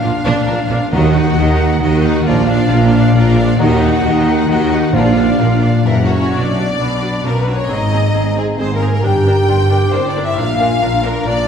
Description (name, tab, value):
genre	cinematic, heroic adventure film score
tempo	134 BPM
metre	3/4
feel	straight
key	Eb harmonic minor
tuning	A4 = 440 Hz
part	clear symphonic violin section	melody	0.0-11.5 s	Gb4 to G5	-26 LUFS	left 3 dB	none
part	bright concert flute	second line	0.0-11.5 s	Fb5 to D6	-24 LUFS	left 2 dB	none
part	clear symphonic violin section	second line	0.0-11.5 s	D4 to G5	-22 LUFS	left 2 dB	none
part	mellow clarinet	second line	0.0-11.5 s	Ab3 to F4	-24 LUFS	left 2 dB	none
part	clear studio viola section	accompaniment	0.0-11.3 s	Bb3 to Bb4	-24 LUFS	equal	none
part	clear symphonic cello section	bass	0.0-11.5 s	Gb2 to Eb3	-18 LUFS	right 1 dB	none
part	mellow tuba	bass	0.0-6.3 s	Gb1 to Eb2	-18 LUFS	right 2 dB	none
part	rich symphonic double bass section	bass	0.0-11.5 s	Gb1 to Eb2	-17 LUFS	equal	none
part	warm French horn section	sustained chords	0.9-11.5 s	Fb3 to G4	-22 LUFS	left 1 dB	none
part	timpani	percussion	0.9-1.6, 4.9-5.6 s	Bb2 to Eb3	-20 LUFS	equal	none
room	wet scoring stage reverb, RT60 1.9 s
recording	heard from further back in the room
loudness	-11 LUFS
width	side -7 dB against mid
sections	0.0-6.3 A section; 6.3-11.5 B section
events	build-up 0.0-6.3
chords	0.0 Bb; 0.9 Ebm; 2.3 Bb; 3.6 Ebm; 4.9 Bb; 5.9 Gb7; 6.3 Bm; 7.7 Ab; 9.0 Gm; 10.4 Bb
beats	0.04 0.48 | 0.92 1.37 1.82 | 2.27 2.71 3.15 | 3.60 4.04 4.49 | 4.94 5.39 5.86 | 6.34 6.79 7.25 | 7.69 8.14 8.59 | 9.04 9.49 9.93 | 10.38 10.82 11.26